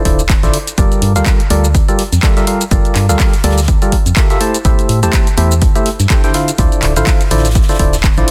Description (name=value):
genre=piano house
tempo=124 BPM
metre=4/4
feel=swing 57% on 16ths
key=G dorian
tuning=A4 = 440 Hz
part: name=percussive organ stab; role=riff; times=0.0-8.3 s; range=D3 to A5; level=-19 LUFS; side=equal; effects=chorus, sidechain pumping, digital delay
part: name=organ-like FM bass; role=bass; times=0.1-8.2 s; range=D1 to A2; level=-16 LUFS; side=equal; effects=sidechain pumping
part: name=electronic kick drum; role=drums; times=0.1-8.1 s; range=none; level=-15 LUFS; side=equal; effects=none
part: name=natural country drum kit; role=drums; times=0.1-8.3 s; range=hi-hat, snare drum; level=-33 LUFS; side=equal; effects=none
part: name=punchy analog drum machine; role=drums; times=0.1-8.3 s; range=handclaps, hi-hat, shaker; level=-22 LUFS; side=equal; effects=none
room=small room ambience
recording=dense, heavily limited modern master, faint mains hum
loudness=-12 LUFS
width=mono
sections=0.0-8.3 A section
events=none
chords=0.0 Dm9; 0.8 Gm9; 4.4 Am7; 6.3 Dm9